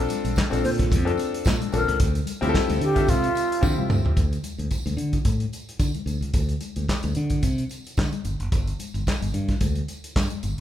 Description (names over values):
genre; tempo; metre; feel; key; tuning
disco; 110 BPM; 4/4; swing 56% on 16ths; D minor; A4 = 440 Hz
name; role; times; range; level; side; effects
clear concert grand piano; accompaniment; 0.0-4.2 s; C4 to E5; -27 LUFS; left 4 dB; none
modern bright fingered electric bass; bass; 0.0-10.5 s; F#1 to D3; -26 LUFS; equal; none
warm soul drum kit; drums; 0.1-10.6 s; handclaps, hi-hat, kick drum, snare drum, toms; -25 LUFS; equal; none
congas; percussion; 0.1-10.6 s; none; -36 LUFS; left 8 dB; none
tambourine; percussion; 0.1-10.6 s; none; -42 LUFS; right 3 dB; none
bright wooden-headed alto flute; melody; 0.6-3.9 s; F4 to C5; -25 LUFS; right 1 dB; none
room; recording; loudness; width
light reverb; band playing live in one room; -22 LUFS; side -11 dB against mid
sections
0.0-4.2 A section; 4.2-10.6 B section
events
drum fill 3.6-4.2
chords
0.0 Bbmaj9; 2.0 Dm9; 4.2 D5; 8.3 G5